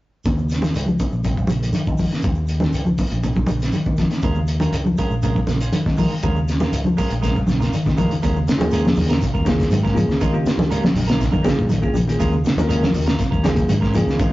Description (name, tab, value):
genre	afrobeat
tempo	120 BPM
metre	4/4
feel	straight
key	unclear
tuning	A4 = 440 Hz
part	shekere	percussion	0.2-14.3 s	none	-33 LUFS	equal	none
part	fingered electric bass	bass	0.3-14.3 s	Bb1 to Eb3	-22 LUFS	equal	none
part	cloth-damped thuddy drum kit	drums	0.3-14.3 s	hi-hat, kick drum, snare drum	-22 LUFS	equal	none
part	congas	percussion	0.3-14.3 s	none	-24 LUFS	right 1 dB	none
part	mellow electric guitar	arpeggios	0.4-14.2 s	C3 to F3	-25 LUFS	left 1 dB	tape echo
part	clean electric guitar	stabs	4.2-14.3 s	Ab3 to Bb4	-28 LUFS	right 2 dB	none
part	bell-like tine electric piano	accompaniment	8.6-14.2 s	Bb3 to Bb4	-24 LUFS	left 1 dB	none
room	moderate stone room reverb, RT60 1.0 s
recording	rough rehearsal-room recording, tube saturation, nothing above 7.6 kHz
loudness	-17 LUFS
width	side -17 dB against mid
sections	0.3-8.2 A section; 8.2-14.3 B section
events	drum fill 7.5-8.2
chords	0.3 Eb9sus4